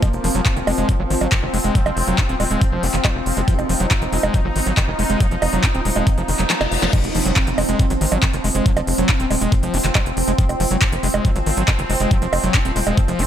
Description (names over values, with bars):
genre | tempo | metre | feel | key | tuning
psychedelic trance | 139 BPM | 4/4 | straight | F phrygian | A4 = 440 Hz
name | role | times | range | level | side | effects
bubbling stepped-filter texture | sustained chords | 0.0-13.3 s | F3 to Eb4 | -24 LUFS | right 1 dB | chorus, built-in reverb, sidechain pumping
screaming distorted acid line | riff | 0.0-13.2 s | Eb3 to F4 | -25 LUFS | equal | distortion, chorus, auto-pan, sidechain pumping, digital delay
big-room dance drum kit | drums | 0.0-13.3 s | bongos, crash cymbal, handclaps, hi-hat, snare drum | -23 LUFS | right 2 dB | none
electronic kick drum | drums | 0.0-13.1 s | none | -18 LUFS | equal | none
ethereal airy pad | texture | 0.0-6.9 s | C4 to F5 | -29 LUFS | right 1 dB | ensemble chorus, built-in reverb, sidechain pumping
tight sequencer bass | bass | 0.1-13.3 s | Eb1 to Ab1 | -23 LUFS | equal | none
zap, reverse cymbal and impact | sound effects | 3.4-8.7 s | none | -29 LUFS | left 2 dB | none
room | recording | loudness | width
light reverb, digital ambience | none | -16 LUFS | side -10 dB against mid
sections
0.0-6.9 A section; 6.9-13.3 B section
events
reverse cymbal 6.3-6.9; kick drops out 6.5-6.9; drum fill 6.5-6.9; drop 6.9-13.3; impact 6.9-8.7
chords
0.0 F5